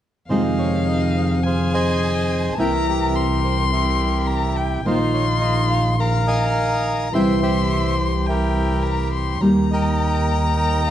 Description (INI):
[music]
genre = tango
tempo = 105 BPM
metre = 4/4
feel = rubato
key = F minor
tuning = A4 = 440 Hz
[part]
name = bandoneon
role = melody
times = 0.3-10.9 s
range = Eb4 to Bb5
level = -23 LUFS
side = equal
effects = none
[part]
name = warm violin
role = second line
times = 0.3-10.9 s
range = F5 to C6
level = -26 LUFS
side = left 5 dB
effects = none
[part]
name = nylon-string guitar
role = accompaniment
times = 0.3-10.9 s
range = C3 to G4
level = -22 LUFS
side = equal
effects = none
[part]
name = warm double bass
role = bass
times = 0.3-10.9 s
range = Bb1 to F2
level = -22 LUFS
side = right 1 dB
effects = none
[sound]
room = moderate large studio reverb, RT60 1.2 s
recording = dark, warm production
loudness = -17 LUFS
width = side -11 dB against mid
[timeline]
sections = 0.3-10.9 A section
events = none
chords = 0.3 Fm7; 2.6 C7; 4.8 Bbsus4; 7.1 C; 9.4 Eb